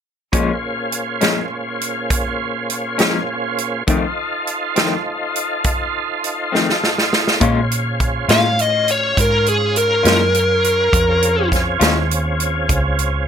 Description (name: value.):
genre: slow blues.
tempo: 68 BPM (dotted quarters).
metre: 12/8.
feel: straight.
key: Bb minor.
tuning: A4 = 440 Hz.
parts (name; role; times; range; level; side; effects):
electric guitar through a small old amp; accompaniment; 0.3-12.0 s; F2 to F4; -18 LUFS; left 5 dB; tremolo.
tonewheel organ; sustained chords; 0.3-13.3 s; Bb2 to C5; -22 LUFS; right 1 dB; slow rotary speaker, chorus vibrato.
natural country drum kit; drums; 0.3-13.1 s; hi-hat, kick drum, snare drum; -19 LUFS; right 1 dB; none.
vintage muted fingered electric bass; bass; 7.4-13.3 s; Db2 to Bb2; -20 LUFS; right 1 dB; none.
smooth overdriven lead guitar; melody; 8.3-11.5 s; Ab4 to F5; -15 LUFS; left 1 dB; none.
room: light reverb.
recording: none.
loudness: -15 LUFS.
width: side -8 dB against mid.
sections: 0.3-7.4 A section; 7.4-13.3 B section.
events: drum fill 6.5-7.4.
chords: 0.3 Bbm7; 3.9 F7; 7.4 Bbm7.